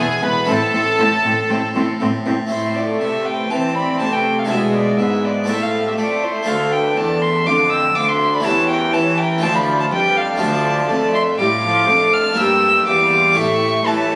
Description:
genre	classical, baroque-style concerto movement with solo episodes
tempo	121 BPM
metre	4/4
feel	straight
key	A minor, D minor from 10.4 s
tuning	A4 = 440 Hz
part	dark violin	melody	0.0-14.2 s	G#4 to F6	-20 LUFS	equal	none
part	rich chamber violin section	melody	0.0-14.2 s	C4 to B5	-31 LUFS	equal	none
part	rich chamber violin section	second line	0.0-14.2 s	E4 to A5	-30 LUFS	equal	none
part	dark chamber viola section	accompaniment	0.0-14.2 s	D3 to C4	-24 LUFS	equal	none
part	harpsichord	accompaniment	0.0-14.2 s	D2 to A4	-26 LUFS	equal	none
part	rich chamber cello section	bass	0.0-14.2 s	D2 to A3	-26 LUFS	equal	none
part	warm chamber double bass section	bass	0.0-2.3 s	E1 to A1	-31 LUFS	equal	none
room	moderate concert hall reverb, RT60 2.2 s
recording	recorded on a phone in the room, studio ambience, compression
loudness	-17 LUFS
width	mono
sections	0.0-2.5 A section; 2.5-14.2 B section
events	none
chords	0.5 Am; 4.5 E7/B; 5.5 Am; 6.5 Dm; 8.4 A7/E; 9.4 Dm; 12.4 Edim/G; 13.4 A7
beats	| 0.48 0.99 1.50 2.01 | 2.51 3.01 3.51 4.00 | 4.50 4.99 5.49 5.99 | 6.48 6.97 7.46 7.96 | 8.45 8.94 9.43 9.92 | 10.41 10.90 11.39 11.89 | 12.38 12.87 13.37 13.86

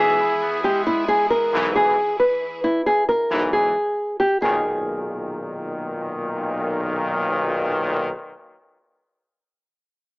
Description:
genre	hip hop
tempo	135 BPM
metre	4/4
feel	half-time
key	G# minor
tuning	A4 = 440 Hz
part	nylon-string guitar	melody	0.0-5.7 s	E4 to B4	-19 LUFS	equal	low-pass filter, cassette tape
part	twangy electric guitar	accompaniment	0.0-1.8 s	E3 to E5	-25 LUFS	equal	low-pass filter
part	clear studio string section	sustained chords	0.0-2.6 s	E3 to G#4	-33 LUFS	right 1 dB	none
part	bright brass ensemble	stabs	0.0-8.1 s	B1 to E3	-23 LUFS	left 1 dB	analog delay
room	light reverb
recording	home recording on cassette, small speaker sound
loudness	-19 LUFS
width	side -28 dB against mid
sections	0.0-4.4 A section; 4.4-8.0 B section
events	none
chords	0.0 E; 4.4 G#madd9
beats	0.42 | 0.86 1.31 1.75 2.20 | 2.64 3.09 3.53 3.98 | 4.42 4.86 5.31 5.75 | 6.20 6.64 7.09 7.53

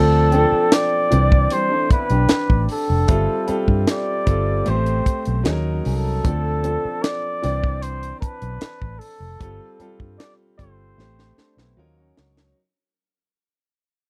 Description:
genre	lush 1970s-style soul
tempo	76 BPM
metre	4/4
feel	straight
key	unclear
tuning	A4 = 440 Hz
part	breathy flugelhorn	melody	0.0-12.1 s	A4 to D5	-25 LUFS	equal	none
part	clear baby grand piano	accompaniment	0.0-12.6 s	E3 to D5	-27 LUFS	equal	none
part	vintage muted fingered electric bass	bass	0.0-12.5 s	F1 to G2	-23 LUFS	equal	none
part	tight funk drum kit	drums	0.3-12.6 s	hi-hat, kick drum, snare drum	-22 LUFS	equal	none
part	large celesta	texture	0.3-9.8 s	E5 to A5	-36 LUFS	equal	none
part	electric guitar through a small old amp	riff	1.5-3.1, 11.4-12.5 s	G3 to G4	-29 LUFS	equal	lush chorus
room	small room ambience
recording	dry, close 1970s-style studio recording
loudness	-19 LUFS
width	mono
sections	0.0-12.6 A section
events	fade-out 0.0-12.6; drum fill 11.0-12.6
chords	0.0 Dm7; 1.1 Cmaj9; 3.1 G9sus4; 4.7 Am9; 5.5 Ebm7; 6.2 Dm7; 7.4 Cmaj9; 9.4 G9sus4; 11.0 Am9; 11.8 Ebm7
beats	0.72 1.51 2.30 | 3.09 3.88 4.66 5.45 | 6.24 7.03 7.83 8.62 | 9.41 10.20 10.99 11.78

